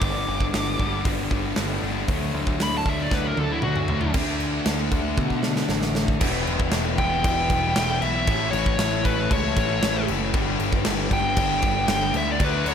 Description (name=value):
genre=quiet-loud alternative rock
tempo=116 BPM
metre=4/4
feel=straight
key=unclear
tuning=A4 = 440 Hz
part: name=dark smooth lead guitar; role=melody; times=0.0-12.7 s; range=E4 to D6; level=-26 LUFS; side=equal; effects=overdrive
part: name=distorted electric guitar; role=riff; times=0.0-12.7 s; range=G2 to E4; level=-28 LUFS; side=left 13 dB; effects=distortion
part: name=thick fuzz guitar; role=riff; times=0.0-6.2 s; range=G2 to D4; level=-30 LUFS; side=right 12 dB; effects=distortion
part: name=growling picked electric bass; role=bass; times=0.0-12.7 s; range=E1 to B2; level=-28 LUFS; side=right 1 dB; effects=overdrive
part: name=big rock drum kit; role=drums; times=0.0-12.7 s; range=crash cymbal, hi-hat, kick drum, snare drum, toms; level=-25 LUFS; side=right 1 dB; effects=none
part: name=clear studio string section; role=sustained chords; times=4.1-12.7 s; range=D4 to A5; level=-37 LUFS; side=left 1 dB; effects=none
part: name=overdriven electric guitar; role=riff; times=6.2-12.7 s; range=E2 to D4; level=-29 LUFS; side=right 2 dB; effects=none
room=small room ambience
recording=none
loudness=-20 LUFS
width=side -8 dB against mid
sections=0.0-4.2 A section; 4.2-6.2 B section; 6.2-12.7 C section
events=lead electric guitar solo 0.0-4.2; drum fill 3.1-4.2, 5.2-6.2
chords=0.0 G; 2.1 D; 6.2 Em; 8.3 A; 10.3 G6